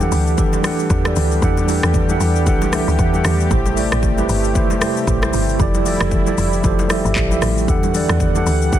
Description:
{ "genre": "amapiano", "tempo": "115 BPM", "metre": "4/4", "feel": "swing 58% on 16ths", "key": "E minor", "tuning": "A4 = 442 Hz", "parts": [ { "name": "mellow tine electric piano", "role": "accompaniment", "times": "0.0-8.8 s", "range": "E3 to G5", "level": "-19 LUFS", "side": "right 3 dB", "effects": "medium stereo tremolo" }, { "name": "warm analog pad", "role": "sustained chords", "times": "0.0-8.8 s", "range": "C3 to F#5", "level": "-25 LUFS", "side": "left 2 dB", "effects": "chorus" }, { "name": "woody log drum bass", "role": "bass", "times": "0.0-8.7 s", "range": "F1 to E2", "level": "-19 LUFS", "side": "equal", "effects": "none" }, { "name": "afro-pop drum kit", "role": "drums", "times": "0.0-8.8 s", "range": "handclaps, hi-hat, kick drum, rim click, shaker", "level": "-20 LUFS", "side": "equal", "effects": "vintage 12-bit sampler grit, soft clipping on snare" }, { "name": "congas", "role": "percussion", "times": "0.0-8.8 s", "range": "none", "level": "-28 LUFS", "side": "left 3 dB", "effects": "none" } ], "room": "digital ambience", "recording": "dense, heavily limited modern master", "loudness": "-14 LUFS", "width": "side -11 dB against mid", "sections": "0.0-8.8 A section", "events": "tine electric piano fill 2.7-3.5", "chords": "0.0 Em11; 3.5 Am7; 5.6 Fmaj13; 7.7 Em11", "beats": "0.38 0.90 | 1.42 1.94 2.47 2.99 | 3.51 4.03 4.55 5.07 | 5.60 6.12 6.64 7.16 | 7.68 8.21 8.73" }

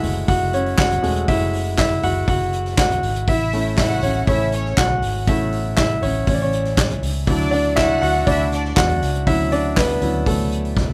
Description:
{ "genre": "piano-driven pop", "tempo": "120 BPM", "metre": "4/4", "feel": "straight", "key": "A major", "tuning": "A4 = 435 Hz", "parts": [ { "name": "warm grand piano", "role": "accompaniment", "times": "0.0-10.9 s", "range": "F#3 to F#5", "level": "-22 LUFS", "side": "equal", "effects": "none" }, { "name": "vintage muted fingered electric bass", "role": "bass", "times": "0.0-10.9 s", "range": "E1 to E2", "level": "-26 LUFS", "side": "equal", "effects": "none" }, { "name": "soft-mallet drum kit", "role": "drums", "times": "0.0-10.9 s", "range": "handclaps, hi-hat, kick drum, snare drum, toms", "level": "-24 LUFS", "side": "equal", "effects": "none" }, { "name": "warm symphonic violin section", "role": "second line", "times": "3.3-8.7 s", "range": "C#4 to F#5", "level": "-29 LUFS", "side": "equal", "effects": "none" } ], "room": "little or no reverb", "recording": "none", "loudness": "-19 LUFS", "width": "mono", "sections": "0.0-10.9 A section", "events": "grand piano solo 0.0-10.9; drum fill 10.8", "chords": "0.0 F#madd9; 3.3 A; 7.3 Dmaj7", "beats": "0.28 0.78 | 1.28 1.78 2.28 2.78 | 3.28 3.78 4.28 4.78 | 5.28 5.78 6.27 6.77 | 7.27 7.77 8.27 8.77 | 9.27 9.77 10.27 10.77" }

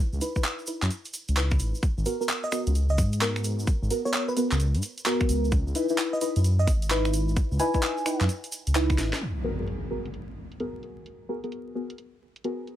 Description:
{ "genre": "UK garage, two-step garage", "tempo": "130 BPM", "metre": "4/4", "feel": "swing 64% on 16ths", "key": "G# minor", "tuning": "A4 = 440 Hz", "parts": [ { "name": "deep mellow chord stab", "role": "stabs", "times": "0.0-12.8 s", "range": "B3 to B4", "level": "-29 LUFS", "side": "equal", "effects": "chorus, phaser, ping-pong delay" }, { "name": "dark detuned saw bass", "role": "bass", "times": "0.1-9.1 s", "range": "G#1 to G#2", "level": "-25 LUFS", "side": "equal", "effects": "none" }, { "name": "egg shaker", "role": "percussion", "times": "0.1-9.2 s", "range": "none", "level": "-40 LUFS", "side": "right 2 dB", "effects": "none" }, { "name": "garage drum kit", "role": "drums", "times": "0.2-12.8 s", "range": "finger snaps, handclaps, hi-hat, snare drum", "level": "-30 LUFS", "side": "equal", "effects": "overdrive, low-pass filter on snare, low-pass filter on hats" }, { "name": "electronic kick drum", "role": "drums", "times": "0.4-9.0 s", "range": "none", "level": "-25 LUFS", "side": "equal", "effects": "overdrive" }, { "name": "bell-like FM electric piano", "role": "melody", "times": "2.4-8.3 s", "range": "B4 to G#5", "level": "-32 LUFS", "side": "right 2 dB", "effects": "chorus, ping-pong delay" }, { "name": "impact", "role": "sound effects", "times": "9.2-11.1 s", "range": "none", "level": "-35 LUFS", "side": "equal", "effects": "none" } ], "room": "light reverb", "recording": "vinyl crackle", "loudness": "-24 LUFS", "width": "side -12 dB against mid", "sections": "0.0-9.2 A section; 9.2-12.8 B section", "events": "filter sweep on synth stab 0.0-9.2; drum fill 9.0; band accent 9.1; impact 9.2-11.1; filter sweep on drum 9.2-12.8", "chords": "0.0 C#m9; 1.8 G#m9; 5.5 C#m9; 9.2 G#m9", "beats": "0.44 0.91 1.37 | 1.83 2.29 2.75 3.21 | 3.67 4.14 4.60 5.06 | 5.52 5.98 6.44 6.91 | 7.37 7.83 8.29 8.75 | 9.21 9.68 10.14 10.60 | 11.06 11.52 11.98 12.44" }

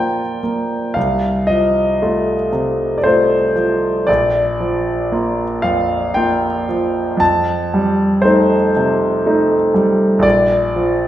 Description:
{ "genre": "classical, romantic nocturne for solo piano", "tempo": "58 BPM", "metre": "3/4", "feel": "rubato", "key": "Bb major", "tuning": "A4 = 440 Hz", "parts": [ { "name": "clear concert grand piano", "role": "solo", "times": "0.0-11.1 s", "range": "Bb1 to A5", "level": "-14 LUFS", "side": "equal", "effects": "none" } ], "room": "wet recital hall reverb, RT60 1.5 s", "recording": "recorded in a church or concert hall", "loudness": "-13 LUFS", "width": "side -12 dB against mid", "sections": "0.0-11.1 A section", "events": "none", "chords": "0.0 Bb; 1.0 F7/C; 4.1 Bb; 7.2 F9; 10.2 Bb", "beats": "| 0.96 2.01 3.04 | 4.08 5.12 6.15 | 7.20 8.24 9.24 | 10.24" }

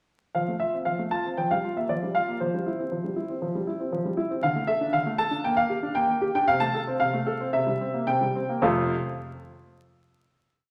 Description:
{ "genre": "classical-period piano sonatina", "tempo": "105-119 BPM", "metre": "4/4", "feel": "rubato", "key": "F major", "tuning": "A4 = 440 Hz", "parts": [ { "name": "warm baby grand piano", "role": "solo", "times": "0.3-8.9 s", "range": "F2 to A5", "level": "-26 LUFS", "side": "equal", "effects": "none" } ], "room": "wet recital hall reverb, RT60 1.5 s", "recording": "vinyl crackle", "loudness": "-26 LUFS", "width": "mono", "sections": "0.3-8.6 A section; 8.6-10.7 final chord", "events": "none", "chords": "0.3 F; 1.4 Gm7/F; 2.4 C/F; 4.4 D5; 5.4 Gm/Bb; 6.5 F/C; 7.5 C7; 8.6 F", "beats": "| 0.34 0.86 1.38 1.89 | 2.41 2.92 3.42 3.93 | 4.44 4.94 5.45 5.96 | 6.48 7.00 7.54 8.08 | 8.64" }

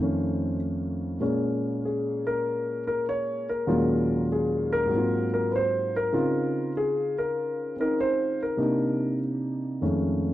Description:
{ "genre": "solo jazz", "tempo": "98 BPM", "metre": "4/4", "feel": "swing 69% on 8ths", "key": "Bb minor", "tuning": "A4 = 445 Hz", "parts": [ { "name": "dark concert grand piano", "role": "solo", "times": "0.0-10.3 s", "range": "Eb2 to Db5", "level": "-24 LUFS", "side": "equal", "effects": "none" } ], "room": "studio reverb", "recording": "dry, close 1970s-style studio recording", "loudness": "-24 LUFS", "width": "side -14 dB against mid", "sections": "0.0-1.2 A section; 1.2-10.3 B section", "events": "grand piano solo 1.2-10.3", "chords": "0.0 F7b13; 1.2 Bbm7; 3.7 Ebm11; 4.9 Ab13; 6.1 Dbmaj9; 8.6 Cm9; 9.8 F7alt", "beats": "0.58 | 1.20 1.82 2.43 3.05 | 3.66 4.28 4.89 5.51 | 6.13 6.74 7.36 7.97 | 8.59 9.20 9.82" }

